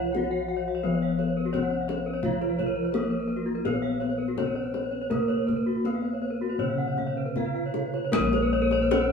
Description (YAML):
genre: Balinese gamelan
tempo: 77-86 BPM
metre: 4/4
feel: straight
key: Bb pelog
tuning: A4 = 440 Hz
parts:
  - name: gamelan-type bronze metallophone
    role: melody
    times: 0.0-9.1 s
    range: Bb3 to Gb4-20c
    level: -30 LUFS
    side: equal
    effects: none
  - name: gamelan-type bronze metallophone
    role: accompaniment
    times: 0.0-8.1 s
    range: Db3-30c to Cb4+20c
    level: -34 LUFS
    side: equal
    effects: none
  - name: gamelan-type bronze metallophone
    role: arpeggios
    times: 0.0-9.1 s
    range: F4-30c to Gb5-20c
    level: -33 LUFS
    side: right 2 dB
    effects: none
  - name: gamelan-type bossed gongs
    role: bass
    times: 0.0-9.1 s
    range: Bb1 to Bb4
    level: -31 LUFS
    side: left 1 dB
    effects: none
  - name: gamelan-type bronze metallophone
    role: arpeggios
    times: 0.1-9.0 s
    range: F4-30c to Gb5-20c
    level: -31 LUFS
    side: left 5 dB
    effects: none
  - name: kendang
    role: percussion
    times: 0.1-9.1 s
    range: none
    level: -33 LUFS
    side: left 3 dB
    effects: none
room: wet studio reverb, RT60 0.8 s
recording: band playing live in one room, small room reverb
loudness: -24 LUFS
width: side -6 dB against mid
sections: 0.0-8.1 A section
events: none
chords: none